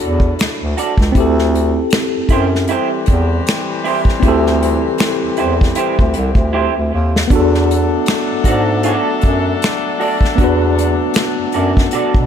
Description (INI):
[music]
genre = R&B, neo-soul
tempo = 78 BPM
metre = 4/4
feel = swing 57% on 16ths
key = unclear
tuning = A4 = 440 Hz
[part]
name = tine electric piano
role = accompaniment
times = 0.0-12.3 s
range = B3 to C#5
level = -18 LUFS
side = left 1 dB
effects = overdrive, medium stereo tremolo
[part]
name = warm horn section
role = stabs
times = 0.0-12.3 s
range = B2 to A4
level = -23 LUFS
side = left 4 dB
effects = diffuse ambient delay
[part]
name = breathy bass clarinet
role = bass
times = 0.0-12.3 s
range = C2 to B2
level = -17 LUFS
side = equal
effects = none
[part]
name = unplugged drum kit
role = drums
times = 0.2-12.3 s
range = finger snaps, hi-hat, kick drum, snare drum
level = -17 LUFS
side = equal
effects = none
[part]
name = electric guitar through a small old amp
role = second line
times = 0.8-12.1 s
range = E4 to D5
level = -22 LUFS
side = right 4 dB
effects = analog chorus, diffuse ambient delay
[sound]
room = light reverb, small room ambience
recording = none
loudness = -12 LUFS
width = side -8 dB against mid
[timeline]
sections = 0.0-12.3 A section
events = drum fill 6.5-7.3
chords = 0.0 E9sus4; 1.1 D9sus4; 7.3 E9sus4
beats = 0.38 | 1.15 1.92 2.69 3.46 | 4.22 4.99 5.76 6.53 | 7.30 8.07 8.84 9.61 | 10.38 11.15 11.92